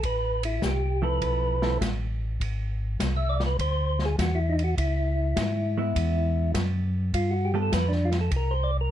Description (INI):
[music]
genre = soul jazz organ trio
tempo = 101 BPM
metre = 4/4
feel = swing 68% on 8ths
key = unclear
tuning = A4 = 440 Hz
[part]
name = percussive tonewheel organ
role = melody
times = 0.0-8.9 s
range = D4 to E5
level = -28 LUFS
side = equal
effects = slow rotary speaker
[part]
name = mellow tonewheel organ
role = bass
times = 0.0-8.9 s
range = G#1 to G#2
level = -26 LUFS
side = equal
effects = chorus vibrato, slow rotary speaker
[part]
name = open jazz drum kit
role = drums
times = 0.0-8.5 s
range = hi-hat, kick drum, ride cymbal, snare drum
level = -32 LUFS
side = equal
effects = none
[part]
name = hollow-body jazz guitar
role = accompaniment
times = 1.0-1.8, 5.8-7.7 s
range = F3 to A4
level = -31 LUFS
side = right 4 dB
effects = none
[sound]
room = light reverb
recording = dark, warm production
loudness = -24 LUFS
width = side -11 dB against mid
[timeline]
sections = 0.0-8.9 A section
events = tonewheel organ solo 0.0-8.9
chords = 0.0 Fmaj7; 2.4 G#aug; 4.8 C#m7; 7.1 G9; 8.3 C7(no3)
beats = | 0.03 0.63 1.22 1.81 | 2.40 3.00 3.59 4.18 | 4.77 5.36 5.96 6.55 | 7.14 7.73 8.32